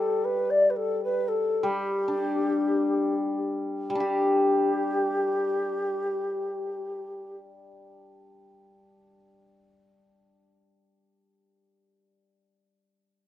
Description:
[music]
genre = chinese traditional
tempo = 53-80 BPM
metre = 2/4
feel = rubato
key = unclear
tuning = A4 = 441 Hz
[part]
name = mellow xiao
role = melody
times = 0.0-7.4 s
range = G4 to D5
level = -27 LUFS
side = left 1 dB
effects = none
[part]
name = hammered dulcimer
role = accompaniment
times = 0.0-12.0 s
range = G3 to G4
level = -27 LUFS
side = left 2 dB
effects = none
[sound]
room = light reverb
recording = close, detailed microphones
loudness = -24 LUFS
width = side -13 dB against mid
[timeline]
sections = 0.0-4.0 A section; 4.0-8.4 B section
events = slowing down 0.5-4.0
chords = none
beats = | 0.49 1.26 | 2.08 2.99 | 4.03 5.13 | 6.22 7.30

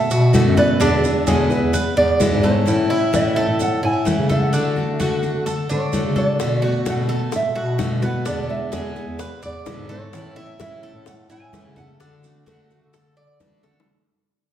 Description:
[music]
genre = latin, Cuban son and guajira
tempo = 129 BPM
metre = 4/4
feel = straight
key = A major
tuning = A4 = 440 Hz
[part]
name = nylon-string guitar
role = melody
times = 0.0-12.7 s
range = B4 to G#5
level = -24 LUFS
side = right 2 dB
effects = none
[part]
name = Cuban tres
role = arpeggios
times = 0.0-13.9 s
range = D4 to D5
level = -26 LUFS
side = right 2 dB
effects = slapback echo
[part]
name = mellow bass clarinet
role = bass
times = 0.1-13.9 s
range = E2 to E3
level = -21 LUFS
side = equal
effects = none
[part]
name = congas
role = percussion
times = 0.1-13.6 s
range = none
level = -26 LUFS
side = left 1 dB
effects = none
[part]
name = maracas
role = percussion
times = 0.1-13.9 s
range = none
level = -36 LUFS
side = right 5 dB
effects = none
[part]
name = picked steel-string acoustic guitar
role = accompaniment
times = 0.3-13.9 s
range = B2 to F#4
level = -24 LUFS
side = left 1 dB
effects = none
[part]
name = bongos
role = percussion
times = 6.4-13.9 s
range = none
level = -34 LUFS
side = left 5 dB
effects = none
[sound]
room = wet large studio reverb, RT60 1.5 s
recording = heard from further back in the room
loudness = -16 LUFS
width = side -10 dB against mid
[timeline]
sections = 0.0-13.9 A section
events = fade-out 0.0-13.9; drum fill 13.6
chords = 0.0 Bm7; 0.8 E7; 2.7 A; 4.5 D; 6.4 Bm7; 8.3 E7; 10.1 A; 12.0 D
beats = 0.34 | 0.81 1.27 1.74 2.20 | 2.67 3.13 3.60 4.07 | 4.53 5.00 5.46 5.93 | 6.40 6.86 7.33 7.80 | 8.26 8.73 9.20 9.67 | 10.13 10.60 11.07 11.54 | 12.00 12.47 12.94 13.41

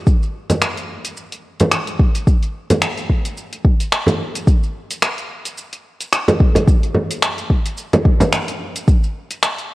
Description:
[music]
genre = downtempo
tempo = 109 BPM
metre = 4/4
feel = swing 57% on 16ths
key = none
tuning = none
[part]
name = deep house drum kit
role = drums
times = 0.1-9.7 s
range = finger snaps, hi-hat, shaker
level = -20 LUFS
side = equal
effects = overdrive
[part]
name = electronic kick drum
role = drums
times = 0.1-9.0 s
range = none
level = -13 LUFS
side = equal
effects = overdrive
[part]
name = frame drum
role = percussion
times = 0.5-8.3 s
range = none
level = -18 LUFS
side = right 1 dB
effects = none
[sound]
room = light reverb, digital ambience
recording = worn, warbling old tape, cassette tape, warbly pitch drift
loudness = -15 LUFS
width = side -18 dB against mid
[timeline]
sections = 0.0-4.5 A section; 4.5-9.7 B section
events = none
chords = none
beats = | 0.07 0.62 1.17 1.72 | 2.27 2.82 3.37 3.92 | 4.47 5.02 5.57 6.12 | 6.67 7.22 7.78 8.32 | 8.88 9.43

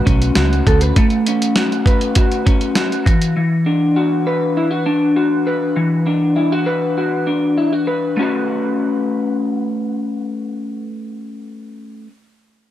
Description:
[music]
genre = indie pop, bedroom pop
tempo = 100 BPM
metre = 4/4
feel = straight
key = A major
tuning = A4 = 440 Hz
[part]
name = electric guitar through a small old amp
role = accompaniment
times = 0.0-12.1 s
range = E3 to B4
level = -16 LUFS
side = left 1 dB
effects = analog chorus, warbly pitch drift
[part]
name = vintage muted fingered electric bass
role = bass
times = 0.1-0.9 s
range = B1 to D2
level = -16 LUFS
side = right 1 dB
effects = none
[part]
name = dusty soul sampler-style drum kit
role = drums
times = 0.1-3.4 s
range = hi-hat, kick drum, snare drum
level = -15 LUFS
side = right 1 dB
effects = none
[sound]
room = light reverb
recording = none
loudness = -14 LUFS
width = side -12 dB against mid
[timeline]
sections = 0.0-8.2 A section; 8.2-10.6 B section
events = none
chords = 0.0 A69; 3.1 Esus2; 8.2 A69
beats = 0.37 | 0.96 1.56 2.16 2.76 | 3.36 3.96 4.56 5.16 | 5.76 6.36 6.96 7.57 | 8.17 8.77 9.37 9.97

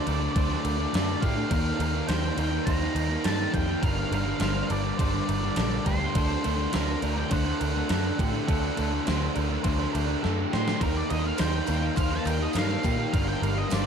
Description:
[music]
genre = rock, shoegaze and dream pop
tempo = 103 BPM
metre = 4/4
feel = straight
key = unclear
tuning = A4 = 440 Hz
[part]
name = octave-fuzz lead guitar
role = melody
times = 0.0-13.9 s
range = Bb4 to Bb5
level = -34 LUFS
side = left 1 dB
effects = distortion, digital delay
[part]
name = electric guitar through a small old amp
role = arpeggios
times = 0.0-13.9 s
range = G4 to C5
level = -37 LUFS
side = equal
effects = analog chorus, digital delay
[part]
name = raw garage guitar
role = riff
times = 0.0-13.9 s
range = G2 to Eb4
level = -31 LUFS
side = right 16 dB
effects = overdrive, reverse reverb
[part]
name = thick fuzz guitar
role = riff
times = 0.0-13.9 s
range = G2 to Eb4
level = -32 LUFS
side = left 14 dB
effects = distortion, wide subtle chorus
[part]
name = vintage muted picked electric bass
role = bass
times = 0.1-13.9 s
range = G1 to Bb2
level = -29 LUFS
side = equal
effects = none
[part]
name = gated 80s digital drum machine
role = drums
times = 0.1-13.9 s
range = crash cymbal, kick drum, snare drum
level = -30 LUFS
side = right 1 dB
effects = gated reverb, gated reverb snare, overdrive
[part]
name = dark analog pad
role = sustained chords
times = 11.7-13.9 s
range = D4 to F5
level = -36 LUFS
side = left 2 dB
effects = chorus, phaser
[part]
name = tambourine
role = percussion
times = 11.4-13.8 s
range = none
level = -44 LUFS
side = right 19 dB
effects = none
[sound]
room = little or no reverb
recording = dark, warm production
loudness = -24 LUFS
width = side -7 dB against mid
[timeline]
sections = 0.0-13.9 A section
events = drum fill 10.2-10.8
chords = 0.0 D; 1.5 Ebadd9; 3.8 Gm7; 6.1 D; 10.8 Ebadd9; 13.1 Gm7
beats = 0.35 0.93 | 1.51 2.09 2.67 3.25 | 3.83 4.41 4.99 5.57 | 6.15 6.73 7.31 7.89 | 8.47 9.05 9.64 10.22 | 10.80 11.38 11.97 12.55 | 13.13 13.71

